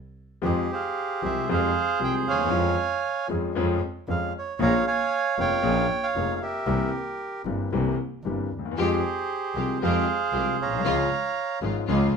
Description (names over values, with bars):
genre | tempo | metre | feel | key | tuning
tango | 116 BPM | 4/4 | rubato | F harmonic minor | A4 = 440 Hz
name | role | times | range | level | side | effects
bandoneon | melody | 0.4-11.6 s | G4 to Bb5 | -25 LUFS | right 4 dB | none
warm grand piano | accompaniment | 0.4-12.1 s | F1 to Ab4 | -27 LUFS | left 4 dB | none
clear double bass | bass | 0.4-12.1 s | F1 to F2 | -30 LUFS | right 2 dB | none
rich studio string section | stabs | 8.8-12.1 s | Ab3 to G4 | -34 LUFS | equal | none
room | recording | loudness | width
moderate studio reverb, RT60 0.7 s | minimal, uncompressed stereo recording | -23 LUFS | side -6 dB against mid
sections
0.4-12.2 A section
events
band accent 0.0-0.4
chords
0.4 Fmadd9; 2.5 Db/F; 4.6 Bbm7; 6.7 C7; 8.8 Fmadd9; 10.8 Db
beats
| 0.44 0.97 1.49 2.01 | 2.53 3.05 3.56 4.08 | 4.59 5.11 5.63 6.16 | 6.67 7.20 7.72 8.25 | 8.77 9.29 9.81 10.33 | 10.85 11.36 11.87